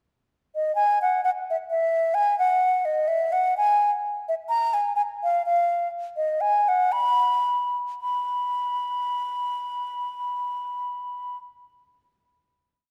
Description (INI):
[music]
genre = alpine folk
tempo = 92-130 BPM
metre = 2/4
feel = swing 55% on 8ths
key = B major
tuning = A4 = 438 Hz
[part]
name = bright baroque flute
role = solo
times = 0.6-11.4 s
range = D#5 to B5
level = -24 LUFS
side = equal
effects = none
[sound]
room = wet concert hall reverb, RT60 1.8 s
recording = none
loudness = -24 LUFS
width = mono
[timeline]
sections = 0.3-8.0 A section; 8.0-10.6 final note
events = slowing down 5.9-8.0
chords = none